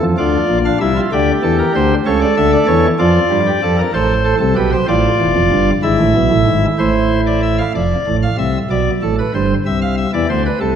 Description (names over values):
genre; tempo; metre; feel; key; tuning
classical, baroque-style 3-part fugue for pipe organ; 64 BPM (dotted quarters); 6/8; straight; D minor; A4 = 440 Hz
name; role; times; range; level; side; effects
pipe organ, cornet; solo; 0.0-10.8 s; E1 to F5; -12 LUFS; equal; none
room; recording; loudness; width
wet scoring stage reverb, RT60 1.7 s; dark, warm production; -12 LUFS; side -8 dB against mid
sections
0.0-7.7 A section; 7.7-10.8 B section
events
none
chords
0.2 Dm; 1.1 Gm/D; 2.1 A/C#; 3.0 Dm/F; 3.9 Am; 4.9 Dm; 5.8 E/G#; 6.8 Am; 7.7 Dm7/F; 8.7 G; 9.6 Cmaj7